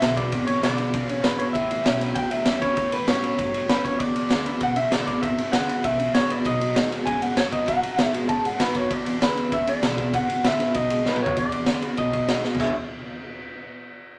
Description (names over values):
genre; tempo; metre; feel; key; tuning
rockabilly; 196 BPM; 4/4; straight; E mixolydian; A4 = 440 Hz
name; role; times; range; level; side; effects
electric guitar through a small old amp; melody; 0.0-12.7 s; B4 to A5; -28 LUFS; equal; none
picked steel-string acoustic guitar; accompaniment; 0.0-12.7 s; E2 to F#4; -35 LUFS; equal; none
electric guitar through a small old amp; riff; 0.0-12.7 s; E2 to C#5; -33 LUFS; equal; harmonic tremolo
upright bass; bass; 0.0-12.7 s; E1 to A2; -38 LUFS; equal; none
raw garage drum kit; drums; 0.0-12.7 s; crash cymbal, kick drum, ride cymbal, snare drum, toms; -27 LUFS; equal; none
room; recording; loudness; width
moderate club reverb, RT60 0.7 s; none; -23 LUFS; mono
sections
0.0-11.4 A section; 11.4-12.6 B section; 12.6-13.8 C section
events
drum fill 11.1-11.4, 12.4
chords
0.0 E7; 1.5 A7; 4.0 E7; 6.4 B7; 8.9 E7; 10.8 B7; 11.4 E7; 12.0 B7; 12.6 E